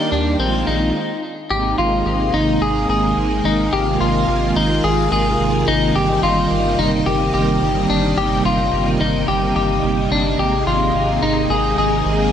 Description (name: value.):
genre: dream pop.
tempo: 108 BPM.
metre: 4/4.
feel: straight.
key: Ab lydian.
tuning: A4 = 440 Hz.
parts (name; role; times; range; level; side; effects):
string machine, violins; sustained chords; 0.0-12.3 s; C3 to G4; -19 LUFS; right 2 dB; ensemble chorus.
clean electric guitar; arpeggios; 0.0-12.3 s; C4 to Ab4; -19 LUFS; left 3 dB; wide subtle chorus, tape echo.
round analog bass; bass; 0.1-12.3 s; G1 to Eb2; -23 LUFS; equal; none.
room: moderate plate reverb, RT60 2.5 s.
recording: none.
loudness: -15 LUFS.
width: side -9 dB against mid.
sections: 0.0-1.5 A section; 1.5-12.3 B section.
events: stop 1.0-1.5.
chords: 0.4 Bb9sus4; 1.5 Abadd9; 6.0 Eb6/G; 10.4 Abadd9.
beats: 0.40 0.95 | 1.51 2.06 2.62 3.17 | 3.73 4.29 4.84 5.40 | 5.95 6.51 7.06 7.62 | 8.17 8.73 9.29 9.84 | 10.40 10.95 11.51 12.06.